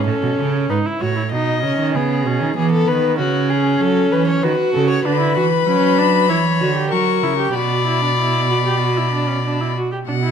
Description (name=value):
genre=classical, baroque-style fugue for string quartet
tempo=96 BPM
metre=4/4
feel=straight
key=B minor from 5.1 s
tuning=A4 = 440 Hz
part: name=dark violin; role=second line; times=0.0-9.7 s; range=F#4 to D#5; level=-21 LUFS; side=left 6 dB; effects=none
part: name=warm viola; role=accompaniment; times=0.0-10.3 s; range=B3 to G4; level=-21 LUFS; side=right 2 dB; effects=none
part: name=rich cello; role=bass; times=0.0-10.3 s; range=G#2 to F#3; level=-19 LUFS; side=right 5 dB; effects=none
part: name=warm violin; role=melody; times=5.1-10.3 s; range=F#5 to C#6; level=-22 LUFS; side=left 10 dB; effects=none
room=moderate concert hall reverb, RT60 2.2 s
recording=close, detailed microphones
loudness=-15 LUFS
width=side -7 dB against mid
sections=0.1-10.1 A section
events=none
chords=0.1 D#7(b5, no3); 1.3 G#m/B; 2.6 C#m7; 3.8 F#m; 5.1 Bm/D; 6.3 C#dim/E; 6.9 F#7; 7.5 Bm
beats=| 0.07 0.70 1.32 1.95 | 2.57 3.19 3.81 4.43 | 5.05 5.67 6.29 6.91 | 7.54 8.18 8.81 9.44 | 10.08